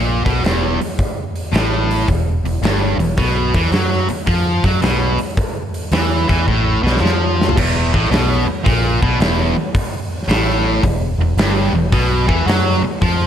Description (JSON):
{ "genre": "blues rock power trio and southern rock", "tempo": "110 BPM", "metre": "4/4", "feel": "swing 67% on 8ths", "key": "unclear", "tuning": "A4 = 440 Hz", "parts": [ { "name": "distorted electric guitar", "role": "riff", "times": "0.0-13.3 s", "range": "E2 to F#3", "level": "-18 LUFS", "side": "equal", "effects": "overdrive" }, { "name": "vintage muted fingered electric bass", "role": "bass", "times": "0.0-13.3 s", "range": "E1 to F#2", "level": "-19 LUFS", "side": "equal", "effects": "none" }, { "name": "big rock drum kit", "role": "drums", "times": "0.3-13.2 s", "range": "crash cymbal, hi-hat, kick drum, snare drum, toms", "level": "-18 LUFS", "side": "equal", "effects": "none" } ], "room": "light reverb, small room ambience", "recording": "none", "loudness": "-14 LUFS", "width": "side -9 dB against mid", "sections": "0.0-7.6 A section; 7.6-13.3 A section", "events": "drum fill 6.5-7.6", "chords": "0.0 E5; 3.2 B5; 7.6 E5; 11.9 B5" }